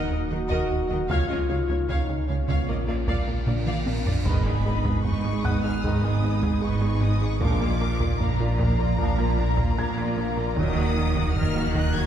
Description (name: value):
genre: cinematic, hybrid orchestral and electronic film score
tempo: 76 BPM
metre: 4/4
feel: straight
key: unclear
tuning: A4 = 440 Hz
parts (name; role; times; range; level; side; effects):
- warm symphonic violin section; melody; 0.0-12.1 s; Db5 to Ab6; -35 LUFS; left 3 dB; none
- rich studio violin section; second line; 0.0-12.1 s; F4 to Gb5; -36 LUFS; left 1 dB; none
- rich symphonic viola section; accompaniment; 0.0-12.1 s; F3 to D5; -35 LUFS; right 1 dB; none
- glassy FM pad; sustained chords; 0.0-12.1 s; F3 to Eb5; -33 LUFS; left 1 dB; ensemble chorus, built-in reverb
- mellow French horn section; sustained chords; 0.0-10.9 s; Ab3 to Gb4; -32 LUFS; left 3 dB; none
- harp-like synth pluck; arpeggios; 0.0-11.9 s; Db3 to Bb4; -35 LUFS; right 2 dB; none
- plucky analog bass; riff; 0.0-12.1 s; Db2 to Bb3; -31 LUFS; right 2 dB; none
- warm sub bass; bass; 0.0-12.1 s; Eb1 to Db2; -31 LUFS; equal; none
- felt-muted upright piano; texture; 0.0-12.1 s; Gb5 to Ab6; -39 LUFS; left 1 dB; ping-pong delay
- rich symphonic cello section; bass; 0.3-12.1 s; Ab2 to Eb3; -32 LUFS; right 2 dB; none
- rich symphonic double bass section; bass; 0.3-12.1 s; Ab1 to Eb2; -29 LUFS; right 2 dB; none
- solo taiko drums; drums; 0.5-12.1 s; none; -29 LUFS; right 1 dB; none
- cymbal swell and impact; sound effects; 3.0-7.4 s; none; -36 LUFS; equal; none
- clear trombone section; sustained chords; 4.3-10.9 s; Bb2 to Gb3; -37 LUFS; right 2 dB; none
room: wet scoring stage reverb, RT60 1.6 s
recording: heard from further back in the room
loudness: -22 LUFS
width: side -9 dB against mid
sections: 0.0-4.3 A section; 4.3-12.1 B section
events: cymbal swell 3.0-4.3; drum fill 3.5-4.3; impact 4.3-7.4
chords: 0.0 Ebm; 1.1 Db; 2.7 Bb; 4.3 Abm; 7.4 Bb; 10.6 Ebm